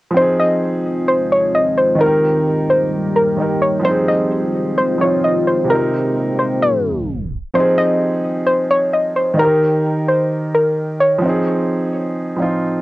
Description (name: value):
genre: hip hop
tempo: 130 BPM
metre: 4/4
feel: half-time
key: F minor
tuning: A4 = 439 Hz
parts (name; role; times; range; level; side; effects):
- warm concert grand piano; accompaniment; 0.1-12.8 s; C3 to Bb4; -18 LUFS; right 1 dB; cassette tape
- soft round pluck; melody; 0.2-11.2 s; Bb4 to Eb5; -16 LUFS; equal; chorus
- deep dark ambient pad; sustained chords; 0.7-7.5 s; Eb3 to G4; -22 LUFS; left 1 dB; chorus, built-in reverb, cassette tape
room: moderate booth ambience, RT60 0.2 s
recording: home recording on cassette, tape stop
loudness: -14 LUFS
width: side -18 dB against mid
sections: 0.2-7.5 A section; 7.5-12.8 B section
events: tape stop 6.6-7.5; break 11.2-12.8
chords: 0.2 Fm7; 2.0 Eb; 3.9 Fm7; 5.7 Cm7; 7.5 Fm7; 9.4 Eb; 11.2 Fm7